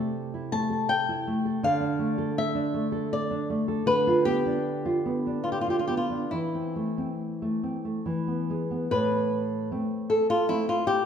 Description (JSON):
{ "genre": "romantic duo for nylon-string guitar and classical guitar", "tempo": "67-82 BPM", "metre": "3/4", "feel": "rubato", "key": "A minor", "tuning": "A4 = 440 Hz", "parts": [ { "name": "flamenco guitar", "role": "melody", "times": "0.0-11.0 s", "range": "E4 to A5", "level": "-27 LUFS", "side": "left 2 dB", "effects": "none" }, { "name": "nylon-string guitar", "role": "accompaniment", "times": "0.0-11.1 s", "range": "A2 to A4", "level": "-28 LUFS", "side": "right 1 dB", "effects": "none" } ], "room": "wet scoring stage reverb, RT60 1.7 s", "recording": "recorded in a church or concert hall", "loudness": "-25 LUFS", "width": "side -8 dB against mid", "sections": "0.0-8.9 A section; 8.9-11.1 B section", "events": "none", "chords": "0.0 Am/C; 1.6 Dm; 3.9 Bdim/D; 6.3 Am/E; 8.0 E; 8.9 Am" }